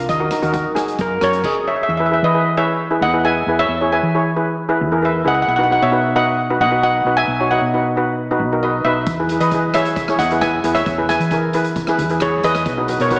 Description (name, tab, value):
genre	calypso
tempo	134 BPM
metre	4/4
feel	straight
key	unclear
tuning	A4 = 440 Hz
part	steel pan	melody	0.0-13.2 s	G#4 to G#5	-20 LUFS	equal	analog delay
part	steel pan	accompaniment	0.0-13.2 s	C#4 to C#5	-22 LUFS	equal	none
part	hollow-body short-scale fingered electric bass	bass	0.0-13.2 s	B1 to E3	-26 LUFS	equal	none
part	street-band drum kit	drums	0.1-1.5, 9.1-13.2 s	crash cymbal, hi-hat, kick drum, rim click	-30 LUFS	equal	none
room	wet lush hall reverb, RT60 1.6 s, studio reverb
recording	dreamy mix soaked in reverb, small speaker sound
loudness	-17 LUFS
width	mono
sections	0.0-1.9 A section; 1.9-13.2 B section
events	steel pan solo 0.0-1.9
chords	0.1 D#m; 1.0 F#; 1.9 E; 5.5 B; 9.1 E; 12.7 B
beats	| 0.09 0.54 0.99 1.44 | 1.89 2.34 2.79 3.24 | 3.69 4.14 4.59 5.04 | 5.48 5.93 6.38 6.83 | 7.28 7.73 8.18 8.62 | 9.07 9.52 9.97 10.42 | 10.87 11.31 11.76 12.21 | 12.66 13.11